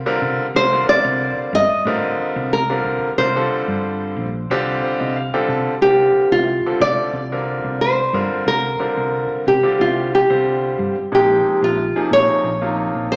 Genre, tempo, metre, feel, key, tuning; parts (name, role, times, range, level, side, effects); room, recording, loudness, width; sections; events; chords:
electric jazz fusion; 91 BPM; 4/4; straight; C dorian; A4 = 440 Hz
hollow-body short-scale fingered electric bass; bass; 0.0-13.2 s; Bb1 to C3; -26 LUFS; equal
bright concert grand piano; accompaniment; 0.1-13.2 s; C3 to A5; -21 LUFS; equal
nylon-string guitar; melody; 0.6-13.2 s; F4 to Eb5; -16 LUFS; equal; slapback echo
moderate lush hall reverb, RT60 2.7 s; live gig heard through the venue's PA, club reverb, small speaker sound; -15 LUFS; side -37 dB against mid
0.0-5.8 A section; 5.8-13.2 B section
grand piano fill 4.5-5.8
0.0 C7(no3); 5.8 C9sus4; 11.1 Bbm11